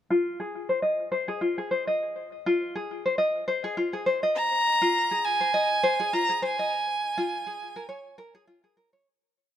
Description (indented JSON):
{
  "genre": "folktronica",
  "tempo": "102 BPM",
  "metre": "4/4",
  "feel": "swing 56% on 16ths",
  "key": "unclear",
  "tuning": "A4 = 439 Hz",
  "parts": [
    { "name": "tenor ukulele", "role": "arpeggios", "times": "0.1-9.1 s", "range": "F4 to Eb5", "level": "-26 LUFS", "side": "left 2 dB", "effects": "low-pass filter, ping-pong delay" },
    { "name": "warm violin", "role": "melody", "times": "4.4-8.5 s", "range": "Ab5 to Bb5", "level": "-24 LUFS", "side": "right 1 dB", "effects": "ping-pong delay" }
  ],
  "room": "light reverb",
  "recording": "none",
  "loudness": "-24 LUFS",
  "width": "side -10 dB against mid",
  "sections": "0.0-9.1 groove",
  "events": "fade-out 5.9-9.1",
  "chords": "0.0 Fm7; 6.7 Bbm7"
}